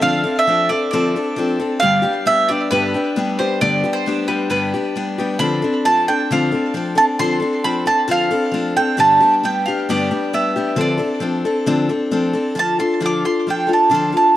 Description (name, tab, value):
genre	rock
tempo	134 BPM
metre	4/4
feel	straight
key	D dorian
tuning	A4 = 440 Hz
part	bowl-back mandolin	melody	0.0-14.4 s	B4 to D6	-17 LUFS	right 2 dB	tape echo
part	picked steel-string acoustic guitar	accompaniment	0.0-14.4 s	G2 to A4	-18 LUFS	left 2 dB	none
room	moderate spring reverb, RT60 2.0 s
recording	dark, warm production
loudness	-15 LUFS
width	side -13 dB against mid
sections	0.0-12.6 A section; 12.6-14.4 B section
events	mandolin solo 12.6-14.4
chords	0.0 Dm7; 1.8 G; 5.4 Dm7; 9.0 G; 10.8 Dm7; 12.6 Dm